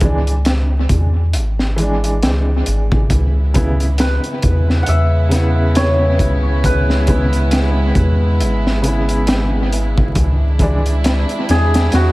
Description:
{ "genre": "trip hop", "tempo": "68 BPM", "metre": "4/4", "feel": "swing 58% on 16ths", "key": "C# phrygian", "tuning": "A4 = 440 Hz", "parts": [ { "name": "felt-muted upright piano", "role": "accompaniment", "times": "0.0-10.9 s", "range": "C#3 to E4", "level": "-23 LUFS", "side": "equal", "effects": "tremolo, low-pass filter, tape echo" }, { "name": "soft dub sub bass", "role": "bass", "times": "0.0-12.1 s", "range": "G#1 to E2", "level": "-15 LUFS", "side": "equal", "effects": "none" }, { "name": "crunchy breakbeat drum kit", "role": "drums", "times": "0.0-12.1 s", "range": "hi-hat, kick drum, snare drum", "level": "-18 LUFS", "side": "equal", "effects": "analog delay" }, { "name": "warm chamber string section", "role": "sustained chords", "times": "3.1-12.1 s", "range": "C#3 to E4", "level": "-22 LUFS", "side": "equal", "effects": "none" }, { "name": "santur", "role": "melody", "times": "4.0-12.1 s", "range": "F#4 to F#5", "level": "-22 LUFS", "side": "left 1 dB", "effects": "tape echo" } ], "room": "light reverb, studio ambience", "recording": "echo-heavy mix, vinyl crackle", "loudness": "-13 LUFS", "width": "side -19 dB against mid", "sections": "0.0-12.1 A section", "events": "none", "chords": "0.0 E7/C#; 3.1 C#m7; 10.2 E7/C#" }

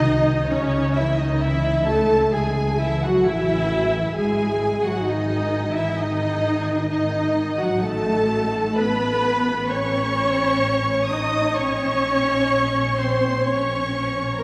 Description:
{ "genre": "classical, slow romantic movement for string orchestra", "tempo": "65 BPM", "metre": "4/4", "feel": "rubato", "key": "C# minor", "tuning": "A4 = 440 Hz", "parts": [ { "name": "rich chamber violin section", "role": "melody", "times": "0.0-14.4 s", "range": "C#5 to D#6", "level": "-32 LUFS", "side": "equal", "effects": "none" }, { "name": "rich chamber violin section", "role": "second line", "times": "0.0-14.4 s", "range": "C#5 to D#6", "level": "-30 LUFS", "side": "equal", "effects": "none" }, { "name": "rich chamber viola section", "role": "accompaniment", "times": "0.0-14.4 s", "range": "C#4 to D#5", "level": "-25 LUFS", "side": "equal", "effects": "none" }, { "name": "dark studio double bass section", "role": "bass", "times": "0.0-14.4 s", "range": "G#1 to C#2", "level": "-29 LUFS", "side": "equal", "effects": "none" }, { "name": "warm chamber cello section", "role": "bass", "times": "0.0-14.4 s", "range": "C#3 to D#4", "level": "-28 LUFS", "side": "equal", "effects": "none" } ], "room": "wet cathedral reverb, RT60 5.7 s", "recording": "recorded in a church or concert hall", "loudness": "-21 LUFS", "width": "mono", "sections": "0.0-14.4 A section", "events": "none", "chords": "0.5 C#m; 4.2 G#5; 7.8 A; 11.6 A#madd9" }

